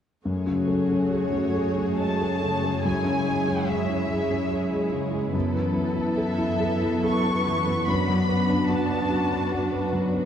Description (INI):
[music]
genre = cinematic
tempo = 71 BPM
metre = 3/4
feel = uneven beats, rubato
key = F# minor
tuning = A4 = 440 Hz
[part]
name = muted symphonic cello section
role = bass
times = 0.2-10.3 s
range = F#2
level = -29 LUFS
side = right 2 dB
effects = none
[part]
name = muted symphonic violin section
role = second line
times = 0.3-10.3 s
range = F#4 to C#5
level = -33 LUFS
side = left 2 dB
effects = none
[part]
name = muted symphonic viola section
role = accompaniment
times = 0.3-10.3 s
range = G#3 to F#4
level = -30 LUFS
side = right 2 dB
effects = none
[part]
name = warm grand piano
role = accompaniment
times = 0.3-10.3 s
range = F#2 to A4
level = -26 LUFS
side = left 1 dB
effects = none
[part]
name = muted studio violin section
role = melody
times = 1.1-9.9 s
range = C#5 to C#6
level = -30 LUFS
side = left 2 dB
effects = none
[sound]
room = wet scoring stage reverb, RT60 1.6 s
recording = dark, warm production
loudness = -22 LUFS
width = side -9 dB against mid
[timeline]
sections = 0.3-10.3 A section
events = none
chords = 0.3 F#madd9; 2.9 C#m/F#; 5.3 Asus2/F#; 7.9 Bm/F#